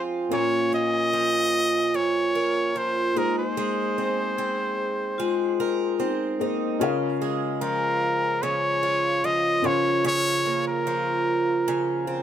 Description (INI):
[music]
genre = acoustic pop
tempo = 74 BPM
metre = 4/4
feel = straight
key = Db major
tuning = A4 = 440 Hz
[part]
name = felt-muted upright piano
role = accompaniment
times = 0.0-12.2 s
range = Bb3 to C6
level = -31 LUFS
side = left 7 dB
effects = none
[part]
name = picked twelve-string acoustic guitar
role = accompaniment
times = 0.0-12.2 s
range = Bb2 to Bb4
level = -26 LUFS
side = right 4 dB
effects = none
[part]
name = bright trumpet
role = melody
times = 0.3-12.2 s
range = Bb4 to Eb5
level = -24 LUFS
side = left 1 dB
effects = none
[part]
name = vibraphone with medium mallets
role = second line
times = 4.4-6.8 s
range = Eb4 to Ab4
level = -27 LUFS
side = left 6 dB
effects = none
[sound]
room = little or no reverb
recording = close, detailed microphones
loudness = -22 LUFS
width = side -10 dB against mid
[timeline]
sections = 0.0-6.8 A section; 6.8-12.2 B section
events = none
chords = 0.3 Bbm; 3.2 Abadd9; 6.8 Db6; 9.6 Bbmadd9/Db